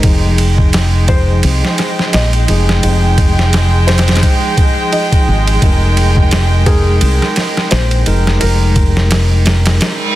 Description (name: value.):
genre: trip hop.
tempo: 86 BPM.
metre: 4/4.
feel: swing 57% on 16ths.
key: F minor.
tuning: A4 = 438 Hz.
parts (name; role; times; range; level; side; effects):
mellow tine electric piano; accompaniment; 0.0-10.2 s; F3 to Bb4; -20 LUFS; equal; harmonic tremolo, vintage 12-bit sampler grit, tape echo.
dark chamber violin section; sustained chords; 0.0-10.2 s; Ab3 to G5; -20 LUFS; right 2 dB; none.
fingered electric bass; bass; 0.0-9.8 s; F1 to C2; -12 LUFS; equal; none.
boom bap sampler-style drum kit; drums; 0.0-10.0 s; kick drum, ride cymbal, snare drum; -14 LUFS; equal; studio reverb.
wind-like tuned noise texture; texture; 0.0-10.2 s; Ab3 to G5; -26 LUFS; equal; none.
felt-muted upright piano; melody; 1.1-10.2 s; Ab4 to Eb5; -23 LUFS; left 2 dB; dub echo.
reverse cymbal; sound effects; 10.0-10.2 s; none; -16 LUFS; right 4 dB; none.
room: little or no reverb.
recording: dense, heavily limited modern master.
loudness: -9 LUFS.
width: side -15 dB against mid.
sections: 0.0-10.2 A section.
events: filter sweep on tine electric piano 0.0-10.2; reverse cymbal 10.0.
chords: 0.0 Fm7.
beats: | 0.04 0.73 1.43 2.13 | 2.83 3.53 4.22 4.92 | 5.62 6.32 7.01 7.71 | 8.41 9.11 9.80.